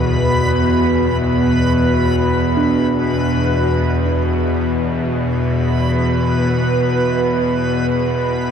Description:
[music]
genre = dark ambient drone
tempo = free time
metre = none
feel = none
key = unclear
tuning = A4 = 439 Hz
[part]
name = deep dark ambient pad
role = sustained chords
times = 0.0-8.5 s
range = B3 to E5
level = -20 LUFS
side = equal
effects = chorus, built-in reverb
[part]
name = gamelan-type bossed gongs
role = arpeggios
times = 0.0-8.5 s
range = D2 to D4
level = -27 LUFS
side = right 1 dB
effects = none
[part]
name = bowed-like drone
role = drone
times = 0.0-8.5 s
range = E2 to B2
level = -17 LUFS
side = left 1 dB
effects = built-in reverb
[part]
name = backwards swelling texture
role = texture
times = 0.0-8.5 s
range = B4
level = -21 LUFS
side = right 2 dB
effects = built-in reverb
[sound]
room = wet huge ambient reverb, RT60 9.4 s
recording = worn, warbling old tape, cassette tape, warbly pitch drift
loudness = -14 LUFS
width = side -7 dB against mid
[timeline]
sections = 0.0-8.5 A section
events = none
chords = 0.0 Esus2

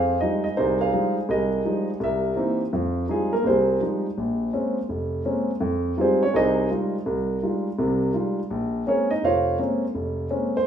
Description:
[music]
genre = solo jazz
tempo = 166 BPM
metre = 4/4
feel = swing 64% on 8ths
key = F minor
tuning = A4 = 440 Hz
[part]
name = warm concert grand piano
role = solo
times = 0.0-10.7 s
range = F1 to F5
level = -21 LUFS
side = equal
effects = none
[sound]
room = light reverb, small room reverb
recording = rough home demo mix, small room ambience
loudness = -21 LUFS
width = side -8 dB against mid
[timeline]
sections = 0.0-2.7 A section; 2.7-10.7 B section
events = grand piano solo 2.7-10.7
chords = 0.0 Fm9; 2.0 C7#9; 2.7 Fm9; 4.2 Bbm9; 5.6 Fm9; 8.5 Bbm9

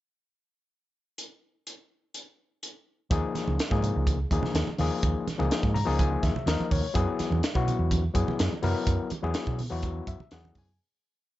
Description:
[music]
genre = electric jazz fusion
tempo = 125 BPM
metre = 4/4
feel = straight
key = Eb phrygian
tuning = A4 = 440 Hz
[part]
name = crisp fusion drum kit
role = drums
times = 1.2-10.7 s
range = hi-hat, kick drum, snare drum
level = -30 LUFS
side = right 1 dB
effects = none
[part]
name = overdriven tine electric piano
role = accompaniment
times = 3.1-10.8 s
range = F3 to Bb5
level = -30 LUFS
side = left 4 dB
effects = plate reverb
[part]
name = hollow-body short-scale fingered electric bass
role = bass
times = 3.1-10.8 s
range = Db2 to Cb3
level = -28 LUFS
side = right 1 dB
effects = none
[part]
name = congas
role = percussion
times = 3.4-10.7 s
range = none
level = -36 LUFS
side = right 5 dB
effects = none
[sound]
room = light reverb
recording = nothing above 7.8 kHz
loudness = -25 LUFS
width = side -15 dB against mid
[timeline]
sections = 1.2-3.1 pickup bar; 3.1-10.8 groove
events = tine electric piano fill 5.5-7.0, 9.8-10.8; fade-out 8.9-10.8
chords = 1.2 N.C.; 3.1 Eb9sus4; 7.0 Gb9sus4

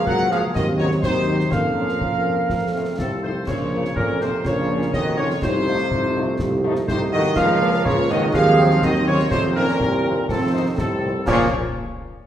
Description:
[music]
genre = military-style march for wind band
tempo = 123 BPM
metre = 2/4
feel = straight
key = Bb minor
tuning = A4 = 441 Hz
[part]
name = dark trumpet section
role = melody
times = 0.0-11.5 s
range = A4 to Gb5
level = -26 LUFS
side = right 1 dB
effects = none
[part]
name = clear woodwind section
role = second line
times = 0.0-11.5 s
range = A4 to Gb5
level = -27 LUFS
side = equal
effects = none
[part]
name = mellow hollow large flute ensemble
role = second line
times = 0.0-11.5 s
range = C4 to Db5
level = -28 LUFS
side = left 1 dB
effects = none
[part]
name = warm euphonium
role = second line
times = 0.0-11.5 s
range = A2 to Gb3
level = -27 LUFS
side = right 2 dB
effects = none
[part]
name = dark trombone section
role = sustained chords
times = 0.0-11.5 s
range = Eb3 to Db4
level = -28 LUFS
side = right 1 dB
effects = none
[part]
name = warm tuba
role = bass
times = 0.1-11.5 s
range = Bb1 to Bb2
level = -23 LUFS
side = right 1 dB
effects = none
[part]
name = concert bass drum, concert snare drum and clash cymbals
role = drums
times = 0.1-11.5 s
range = none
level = -28 LUFS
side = left 1 dB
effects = none
[part]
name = mellow French horn section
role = accompaniment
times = 0.3-11.5 s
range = Eb3 to F4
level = -30 LUFS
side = left 3 dB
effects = none
[sound]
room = wet recital hall reverb, RT60 1.5 s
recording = heard from further back in the room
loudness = -18 LUFS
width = side -10 dB against mid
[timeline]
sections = 0.0-11.3 A section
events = none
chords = 0.0 Bbm/Db; 0.6 Cdim/Eb; 1.5 Bbm/F; 2.5 F; 3.5 Bbm; 5.4 F7/C; 7.4 Bbm/Db; 8.3 Cdim/Eb; 9.3 F7sus4; 11.3 Bbm

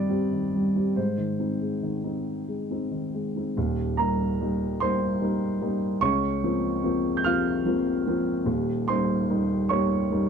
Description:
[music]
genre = neoclassical minimalist piano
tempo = 46-49 BPM (dotted quarters)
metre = 6/8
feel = rubato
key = Eb mixolydian from 3.6 s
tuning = A4 = 439 Hz
[part]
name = dark grand piano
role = solo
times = 0.0-10.3 s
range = Eb1 to G6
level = -23 LUFS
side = equal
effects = none
[sound]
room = moderate studio ambience, RT60 0.5 s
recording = dark, warm production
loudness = -24 LUFS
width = side -6 dB against mid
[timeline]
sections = 0.0-3.6 A section; 3.6-10.3 B section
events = none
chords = 0.0 Cm/G; 1.0 Ab; 3.6 Eb; 6.0 Bbmadd9/Db; 8.5 Eb

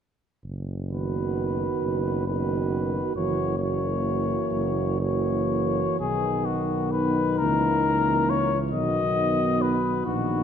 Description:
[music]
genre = classical, hymn-like piece for brass band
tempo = 43 BPM (dotted quarters)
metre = 6/8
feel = uneven beats, rubato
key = B major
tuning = A4 = 440 Hz
[part]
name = mellow tuba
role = bass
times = 0.4-10.4 s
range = F#1 to C#2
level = -29 LUFS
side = right 1 dB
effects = none
[part]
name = mellow cornet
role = melody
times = 0.9-10.4 s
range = F#4 to D#5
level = -27 LUFS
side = left 6 dB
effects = none
[part]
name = mellow French horn section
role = second line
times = 0.9-10.4 s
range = A#3 to F#4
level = -30 LUFS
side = right 7 dB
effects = none
[part]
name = warm euphonium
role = accompaniment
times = 0.9-10.4 s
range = A#3 to F#4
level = -31 LUFS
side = left 2 dB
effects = none
[part]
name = warm trombone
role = accompaniment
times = 0.9-10.4 s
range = D#3 to E3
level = -31 LUFS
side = right 3 dB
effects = none
[sound]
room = moderate concert hall reverb, RT60 1.9 s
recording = none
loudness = -22 LUFS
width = side -8 dB against mid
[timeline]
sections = 0.4-6.0 A section; 6.0-10.4 B section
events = none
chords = 0.4 B/F#; 3.2 F#7; 6.0 B; 7.4 A#dim/C#; 8.7 B

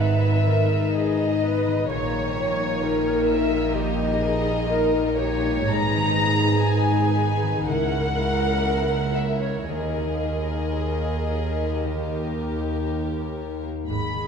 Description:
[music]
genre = classical, slow romantic movement for symphony orchestra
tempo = 55-66 BPM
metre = 4/4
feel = rubato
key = unclear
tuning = A4 = 440 Hz
[part]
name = dark studio violin section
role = melody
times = 0.0-14.3 s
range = C#5 to B5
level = -28 LUFS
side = left 3 dB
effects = none
[part]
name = warm chamber violin section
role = second line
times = 0.0-13.7 s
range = D#4 to B4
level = -30 LUFS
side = left 4 dB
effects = none
[part]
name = dark symphonic viola section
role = accompaniment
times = 0.0-14.3 s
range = G4 to C#5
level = -28 LUFS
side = right 2 dB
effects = none
[part]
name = concert harp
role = arpeggios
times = 0.0-14.3 s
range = G#2 to A#4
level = -28 LUFS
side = left 8 dB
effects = none
[part]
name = rich symphonic double bass section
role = bass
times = 0.0-14.3 s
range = G#1 to D#2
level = -28 LUFS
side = right 3 dB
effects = none
[part]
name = warm symphonic cello section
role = bass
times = 0.0-14.3 s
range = C#2 to A#2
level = -28 LUFS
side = right 4 dB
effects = none
[sound]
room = wet concert hall reverb, RT60 2.3 s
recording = minimal, uncompressed stereo recording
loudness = -21 LUFS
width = side -6 dB against mid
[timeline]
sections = 0.0-14.3 A section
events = none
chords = 0.0 G#m; 1.9 D#7/A#; 5.7 G#m; 7.7 A#dim/C#; 9.7 D#sus4; 11.8 D#

